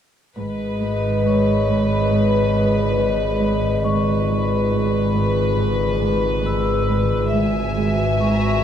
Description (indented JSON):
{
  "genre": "cinematic, suspense film score",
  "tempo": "69 BPM",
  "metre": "4/4",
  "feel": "straight",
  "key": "G# minor",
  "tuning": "A4 = 440 Hz",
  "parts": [
    { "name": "warm studio violin section", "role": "melody", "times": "0.4-8.6 s", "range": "B4 to E5", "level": "-24 LUFS", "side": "left 4 dB", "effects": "none" },
    { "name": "glass harmonica", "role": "sustained chords", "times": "0.4-8.6 s", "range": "D#4 to E5", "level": "-24 LUFS", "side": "left 2 dB", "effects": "none" },
    { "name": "dark studio cello section", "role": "riff", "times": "0.4-8.5 s", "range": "G#2 to G#3", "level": "-26 LUFS", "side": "right 2 dB", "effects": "none" },
    { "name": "dark studio double bass section", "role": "bass", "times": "0.4-8.6 s", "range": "G#1", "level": "-24 LUFS", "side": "right 2 dB", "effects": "none" },
    { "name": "warm studio cello section", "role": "bass", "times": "0.4-8.6 s", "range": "G#2", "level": "-24 LUFS", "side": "right 3 dB", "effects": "none" },
    { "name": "metallic inharmonic drone", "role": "drone", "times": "1.7-8.6 s", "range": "G#1", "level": "-27 LUFS", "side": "equal", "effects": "chorus, built-in reverb" },
    { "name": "vibraphone with medium mallets", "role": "texture", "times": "1.3-8.6 s", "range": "C#5 to E6", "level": "-30 LUFS", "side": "left 2 dB", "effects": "none" },
    { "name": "rich studio violin section", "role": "texture", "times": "7.4-8.6 s", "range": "G#5 to A#5", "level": "-31 LUFS", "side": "left 5 dB", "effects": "none" }
  ],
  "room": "moderate scoring stage reverb, RT60 1.9 s",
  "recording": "none",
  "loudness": "-17 LUFS",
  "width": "side -9 dB against mid",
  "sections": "0.4-8.6 A section",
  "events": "none",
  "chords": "0.4 G#m; 7.3 Eadd9/G#",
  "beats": "| 0.38 1.25 2.12 2.98 | 3.85 4.72 5.59 6.46 | 7.33 8.20"
}